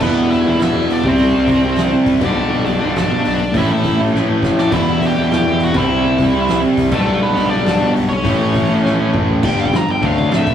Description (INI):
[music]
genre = punk rock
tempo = 204 BPM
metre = 4/4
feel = straight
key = unclear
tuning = A4 = 441 Hz
[part]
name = nasal lead guitar with a parked wah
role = melody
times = 0.0-10.5 s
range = A3 to Bb5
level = -21 LUFS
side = right 1 dB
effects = overdrive
[part]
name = distorted electric guitar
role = riff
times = 0.0-10.5 s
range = G2 to E4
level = -19 LUFS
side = left 5 dB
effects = distortion
[part]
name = distorted electric guitar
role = riff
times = 0.0-10.5 s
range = E2 to D4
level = -19 LUFS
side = right 4 dB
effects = distortion
[part]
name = fuzz guitar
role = riff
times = 0.0-10.5 s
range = E2 to D4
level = -23 LUFS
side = equal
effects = none
[part]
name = fuzz picked electric bass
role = bass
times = 0.0-10.5 s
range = E1 to D3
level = -20 LUFS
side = right 1 dB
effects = overdrive
[part]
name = loose indie drum kit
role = drums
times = 0.0-10.5 s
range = crash cymbal, hi-hat, kick drum, snare drum, toms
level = -23 LUFS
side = equal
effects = none
[sound]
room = moderate small room reverb, RT60 0.5 s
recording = rough rehearsal-room recording, tube saturation, small room ambience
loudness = -13 LUFS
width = side -9 dB against mid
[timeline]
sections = 0.0-9.4 A section; 9.4-10.5 B section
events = half time 0.0-9.4; drum fill 4.1-4.7, 8.8-9.4; lead electric guitar solo 9.4-10.5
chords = 0.0 Em; 1.0 C; 2.2 G/B; 3.5 A; 4.7 Em; 5.8 C; 6.9 G/B; 8.3 A; 9.4 G5; 10.0 D